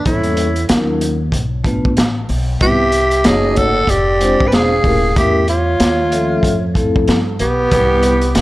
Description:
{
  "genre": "hip hop, jazz-hop",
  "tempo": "94 BPM",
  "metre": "4/4",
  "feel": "swing 57% on 16ths",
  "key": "unclear",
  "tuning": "A4 = 440 Hz",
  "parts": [
    { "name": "growling tenor saxophone", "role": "melody", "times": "0.0-8.4 s", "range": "B3 to B4", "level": "-16 LUFS", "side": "equal", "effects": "none" },
    { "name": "breathy silver concert flute", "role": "second line", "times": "0.0-8.4 s", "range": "G4 to G5", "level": "-22 LUFS", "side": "right 2 dB", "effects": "tape echo" },
    { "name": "vibraphone with soft mallets", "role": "accompaniment", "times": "0.0-8.4 s", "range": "F3 to E5", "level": "-20 LUFS", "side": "left 1 dB", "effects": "none" },
    { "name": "upright bass", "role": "bass", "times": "0.0-8.4 s", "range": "Eb1 to G2", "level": "-19 LUFS", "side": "equal", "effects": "none" },
    { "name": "crunchy breakbeat drum kit", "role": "drums", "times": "0.1-8.4 s", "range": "hi-hat, kick drum, snare drum", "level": "-17 LUFS", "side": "equal", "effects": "none" }
  ],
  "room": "light reverb",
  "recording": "dry, gritty hardware recording",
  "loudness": "-12 LUFS",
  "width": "side -17 dB against mid",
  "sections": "0.0-8.4 A section",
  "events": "none",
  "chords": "0.1 A7b9/E; 0.7 Ebm9; 1.3 Bm7b5; 2.6 Cmaj7; 3.2 F#m6; 3.9 Fm6; 5.2 A7b9/E; 5.8 Ebsus2; 6.4 Fmaj7; 7.7 Cmaj7",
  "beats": "| 0.06 0.69 1.33 1.97 | 2.61 3.25 3.88 4.52 | 5.16 5.80 6.44 7.08 | 7.71 8.35"
}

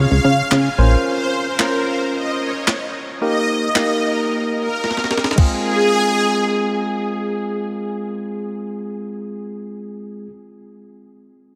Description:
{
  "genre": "dance-pop",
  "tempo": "111 BPM",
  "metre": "4/4",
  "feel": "straight",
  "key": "F minor",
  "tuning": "A4 = 438 Hz",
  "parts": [
    { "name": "supersaw pad", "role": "melody", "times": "0.0-7.0 s", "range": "Ab4 to Ab5", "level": "-24 LUFS", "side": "equal", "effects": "ensemble chorus, sidechain pumping, analog delay" },
    { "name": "barky tine electric piano", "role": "accompaniment", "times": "0.0-10.3 s", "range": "Ab3 to Db5", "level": "-25 LUFS", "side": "equal", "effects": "sidechain pumping" },
    { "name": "plucky analog bass", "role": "bass", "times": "0.0-1.0 s", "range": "Bb1 to Db3", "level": "-16 LUFS", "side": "equal", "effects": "sidechain pumping" },
    { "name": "downlifter", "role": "sound effects", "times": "0.5-1.1 s", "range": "none", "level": "-46 LUFS", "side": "equal", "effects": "none" },
    { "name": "crisp 8-bit digital drum machine", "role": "drums", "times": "0.5-5.5 s", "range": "crash cymbal, handclaps, kick drum, snare drum", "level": "-24 LUFS", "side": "equal", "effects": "overdrive" }
  ],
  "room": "wet cathedral reverb, RT60 6.2 s",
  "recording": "dreamy mix soaked in reverb",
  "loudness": "-19 LUFS",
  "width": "mono",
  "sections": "0.0-5.4 A section; 5.4-9.7 B section",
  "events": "drum fill 4.8-5.4",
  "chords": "0.0 Db; 0.8 Bbmadd9; 3.2 Eb; 5.4 Fm",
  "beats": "0.51 | 1.05 1.59 2.13 2.68 | 3.22 3.76 4.30 4.84 | 5.38 5.92 6.46 7.00 | 7.54 8.08 8.62 9.16"
}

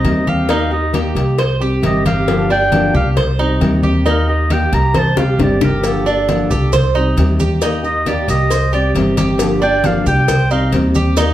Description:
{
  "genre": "latin, Cuban son and guajira",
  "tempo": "135 BPM",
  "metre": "4/4",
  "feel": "straight",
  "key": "unclear",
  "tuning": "A4 = 440 Hz",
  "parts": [
    { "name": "warm clarinet", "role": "melody", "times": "0.0-10.7 s", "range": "A4 to Bb5", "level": "-20 LUFS", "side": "right 1 dB", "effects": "plate reverb" },
    { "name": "nylon-string guitar", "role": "accompaniment", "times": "0.0-11.3 s", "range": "C3 to G4", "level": "-19 LUFS", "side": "left 2 dB", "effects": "none" },
    { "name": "Cuban tres", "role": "arpeggios", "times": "0.0-11.3 s", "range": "D4 to C5", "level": "-19 LUFS", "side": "right 4 dB", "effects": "none" },
    { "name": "upright bass", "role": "bass", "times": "0.0-11.3 s", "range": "G1 to Eb2", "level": "-18 LUFS", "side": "equal", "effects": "none" },
    { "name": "congas", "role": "percussion", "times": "0.0-11.3 s", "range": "none", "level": "-21 LUFS", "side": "equal", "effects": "none" },
    { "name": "cowbell and bongos", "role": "percussion", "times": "0.0-11.3 s", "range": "none", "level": "-23 LUFS", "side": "left 5 dB", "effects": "none" },
    { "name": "maracas", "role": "percussion", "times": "5.8-11.3 s", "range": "none", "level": "-31 LUFS", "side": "right 6 dB", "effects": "none" }
  ],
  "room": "wet large studio reverb, RT60 0.9 s",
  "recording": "heard from further back in the room",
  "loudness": "-12 LUFS",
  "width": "side -13 dB against mid",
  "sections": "0.0-11.3 A section",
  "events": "clarinet solo 0.0-11.3; drum fill 4.9-5.8",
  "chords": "0.5 Eb; 1.4 Cm; 2.3 Gm7; 3.2 Cm; 4.1 Eb; 4.9 Cm; 5.8 Gm7; 6.7 Cm; 7.6 Eb; 8.5 Cm; 9.4 Gm7; 10.3 Cm",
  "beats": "0.05 | 0.50 0.94 1.39 1.83 | 2.28 2.72 3.17 3.61 | 4.06 4.50 4.95 5.39 | 5.84 6.28 6.73 7.17 | 7.62 8.06 8.51 8.95 | 9.39 9.84 10.28 10.73 | 11.17"
}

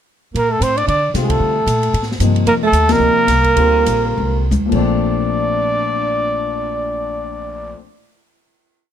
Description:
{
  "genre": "modal jazz",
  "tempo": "160-228 BPM",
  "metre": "4/4",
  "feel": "swing 58% on 8ths",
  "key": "Bb major",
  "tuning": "A4 = 438 Hz",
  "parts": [
    { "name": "clear alto saxophone", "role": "second line", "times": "0.3-7.7 s", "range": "Ab3 to D4", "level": "-22 LUFS", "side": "right 8 dB", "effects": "none" },
    { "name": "upright bass", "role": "bass", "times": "0.3-7.7 s", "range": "Bb1 to D3", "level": "-20 LUFS", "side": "equal", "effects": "none" },
    { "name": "breathy trumpet", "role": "melody", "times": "0.4-7.8 s", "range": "Ab4 to D5", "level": "-18 LUFS", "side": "equal", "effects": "none" },
    { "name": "open jazz drum kit", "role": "drums", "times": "0.4-4.8 s", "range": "crash cymbal, hi-hat, kick drum, ride cymbal, snare drum, toms", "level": "-25 LUFS", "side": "equal", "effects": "none" },
    { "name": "warm grand piano", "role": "accompaniment", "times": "1.1-7.8 s", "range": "Bb2 to F4", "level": "-21 LUFS", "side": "left 8 dB", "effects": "none" }
  ],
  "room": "light reverb",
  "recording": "none",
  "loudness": "-14 LUFS",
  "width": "side -9 dB against mid",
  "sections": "0.4-4.9 A section; 4.9-7.9 final hit",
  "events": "band accent 1.3, 2.9; slowing down 2.5-4.9; drum fill 4.2-4.9",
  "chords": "0.4 Bbmaj9",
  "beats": "| 0.35 0.61 0.88 1.14 | 1.41 1.67 1.94 2.20 | 2.47 2.73 3.00 3.28 | 3.57 3.87 4.18 4.52 | 4.88 5.25 5.63 6.00 | 6.38 6.75 7.12 7.50"
}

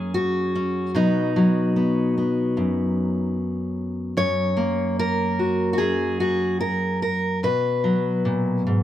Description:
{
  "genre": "folk, solo fingerstyle acoustic guitar",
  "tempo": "74 BPM",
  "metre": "4/4",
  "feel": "rubato",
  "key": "F# major",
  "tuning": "A4 = 438 Hz",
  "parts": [
    { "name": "fingerpicked steel-string acoustic guitar", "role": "solo", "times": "0.0-8.8 s", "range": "F#2 to C#5", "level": "-20 LUFS", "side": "equal", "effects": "none" }
  ],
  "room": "light reverb",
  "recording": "none",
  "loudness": "-20 LUFS",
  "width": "side -12 dB against mid",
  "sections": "0.0-8.8 A section",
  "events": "none",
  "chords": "0.0 F#; 0.9 B; 4.2 F#add9; 7.4 B5",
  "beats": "0.14 | 0.95 1.76 2.57 3.37 | 4.17 4.98 5.79 6.61 | 7.43 8.25"
}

